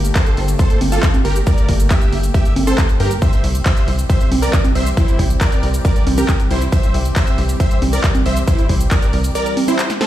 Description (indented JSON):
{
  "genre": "uplifting trance",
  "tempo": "137 BPM",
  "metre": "4/4",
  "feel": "straight",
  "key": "unclear",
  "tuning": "A4 = 440 Hz",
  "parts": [
    { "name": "lush unison pad", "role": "sustained chords", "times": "0.0-10.1 s", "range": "D3 to G4", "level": "-25 LUFS", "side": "equal", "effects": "chorus, sidechain pumping" },
    { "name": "tight sequencer bass", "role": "bass", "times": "0.0-9.3 s", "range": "G1 to G2", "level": "-17 LUFS", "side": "equal", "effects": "sidechain pumping" },
    { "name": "punchy analog drum machine", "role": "drums", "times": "0.0-10.1 s", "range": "congas, handclaps, hi-hat, shaker, snare drum", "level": "-22 LUFS", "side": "right 1 dB", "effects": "none" },
    { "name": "supersaw stab", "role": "melody", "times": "0.2-10.1 s", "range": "C4 to E5", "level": "-22 LUFS", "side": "right 1 dB", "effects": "sidechain pumping, ping-pong delay" },
    { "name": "electronic kick drum", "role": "drums", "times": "0.2-9.0 s", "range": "none", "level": "-14 LUFS", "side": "equal", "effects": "overdrive" }
  ],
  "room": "little or no reverb",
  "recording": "played on a big sound system in a bare room, stone room reverb",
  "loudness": "-13 LUFS",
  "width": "side -13 dB against mid",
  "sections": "0.0-10.1 A section",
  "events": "drum fill 9.9",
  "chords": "0.0 Gmadd9; 3.2 C"
}